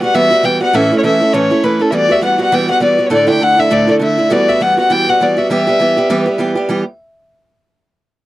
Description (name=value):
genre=celtic folk, Celtic reel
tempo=202 BPM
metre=4/4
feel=swing 57% on 8ths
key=E dorian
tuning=A4 = 440 Hz
part: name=dark fiddle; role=melody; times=0.0-6.4 s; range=A4 to G5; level=-13 LUFS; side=left 1 dB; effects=none
part: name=picked steel-string acoustic guitar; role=accompaniment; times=0.0-6.8 s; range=D2 to G4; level=-14 LUFS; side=right 2 dB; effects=none
room=light reverb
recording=dry, close 1970s-style studio recording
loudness=-10 LUFS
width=side -16 dB against mid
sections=0.0-6.7 A section; 6.7-7.9 B section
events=none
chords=0.0 Emadd9; 0.7 A; 1.9 Emadd9; 3.1 Dsus2; 4.3 Emadd9; 5.5 Em